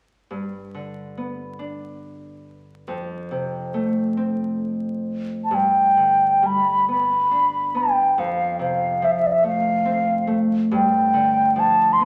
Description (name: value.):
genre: celtic folk, Celtic slow air.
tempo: 46 BPM (dotted quarters).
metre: 6/8.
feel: rubato.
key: G mixolydian.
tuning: A4 = 441 Hz.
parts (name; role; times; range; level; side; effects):
Celtic harp; accompaniment; 0.3-12.1 s; F2 to D4; -28 LUFS; equal; none.
mellow hollow wooden flute; melody; 5.4-12.1 s; D5 to C6; -20 LUFS; equal; none.
room: wet large studio reverb, RT60 1.4 s.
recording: vinyl crackle.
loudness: -20 LUFS.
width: mono.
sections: 0.3-5.5 A section; 5.5-12.1 B section.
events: none.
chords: 0.3 G; 2.9 F; 5.5 G; 8.2 F; 10.7 G7(no3).